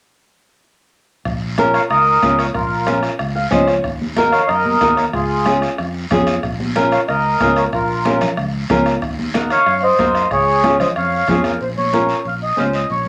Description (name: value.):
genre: latin, cumbia.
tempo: 186 BPM.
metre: 4/4.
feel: straight.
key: Bb minor.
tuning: A4 = 439 Hz.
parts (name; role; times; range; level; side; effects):
modern bright fingered electric bass; bass; 1.3-13.1 s; Bb1 to Gb2; -27 LUFS; equal; none.
bombo; percussion; 1.3-11.6 s; none; -29 LUFS; equal; none.
congas; percussion; 1.3-13.1 s; none; -26 LUFS; equal; none.
guiro; percussion; 1.3-13.1 s; none; -33 LUFS; equal; none.
flamenco guitar; accompaniment; 1.6-12.8 s; Db4 to F5; -20 LUFS; equal; none.
mellow accordion; melody; 1.7-13.1 s; F4 to F5; -18 LUFS; equal; none.
room: wet club reverb, RT60 0.6 s.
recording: none.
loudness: -17 LUFS.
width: mono.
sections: 1.3-11.6 A section; 11.6-13.1 B section.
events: nylon-string guitar fill 3.2-3.8.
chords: 1.3 Bbm; 3.8 Ebm; 5.1 Db; 6.4 Bbm; 9.0 Ebm; 10.3 Db; 11.6 Bbm.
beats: | 1.26 1.58 1.90 2.23 | 2.55 2.88 3.20 3.52 | 3.85 4.17 4.50 4.82 | 5.14 5.46 5.79 6.11 | 6.43 6.76 7.08 7.41 | 7.73 8.05 8.38 8.70 | 9.02 9.35 9.67 9.99 | 10.31 10.64 10.96 11.28 | 11.61 11.93 12.25 12.58 | 12.90.